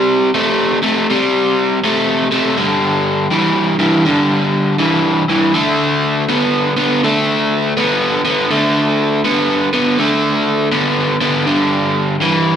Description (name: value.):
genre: rock.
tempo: 81 BPM.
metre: 4/4.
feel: swing 65% on 8ths.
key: G major.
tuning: A4 = 437 Hz.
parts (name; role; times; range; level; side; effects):
overdriven electric guitar; solo; 0.0-12.6 s; G2 to B3; -12 LUFS; equal; slapback echo.
room: little or no reverb.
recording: live gig heard through the venue's PA, club reverb.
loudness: -12 LUFS.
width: side -8 dB against mid.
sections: 0.0-12.6 A section.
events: none.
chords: 0.0 C5; 2.6 G5; 5.6 D5; 11.5 G5.